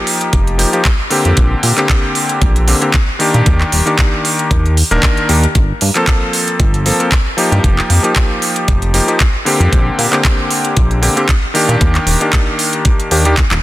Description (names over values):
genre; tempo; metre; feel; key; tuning
nu-disco, nu disco; 115 BPM; 4/4; swing 54% on 16ths; unclear; A4 = 442 Hz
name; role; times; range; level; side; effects
warm electric grand piano; accompaniment; 0.0-13.4 s; D3 to Bb4; -15 LUFS; left 1 dB; sidechain pumping, ping-pong delay
pop drum kit; drums; 0.1-13.6 s; handclaps, hi-hat; -17 LUFS; right 1 dB; none
chorused synth bass; bass; 0.3-13.6 s; Eb1 to Bb2; -13 LUFS; equal; none
electronic kick drum; drums; 0.3-13.5 s; none; -13 LUFS; equal; none
room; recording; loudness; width
light reverb; dense, heavily limited modern master; -10 LUFS; side -16 dB against mid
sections
0.0-13.6 A section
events
none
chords
0.0 F9sus4; 1.4 Bb69; 3.5 Ebmaj7; 5.5 Gm11; 7.6 F9sus4; 9.7 Bb69; 11.8 Ebmaj7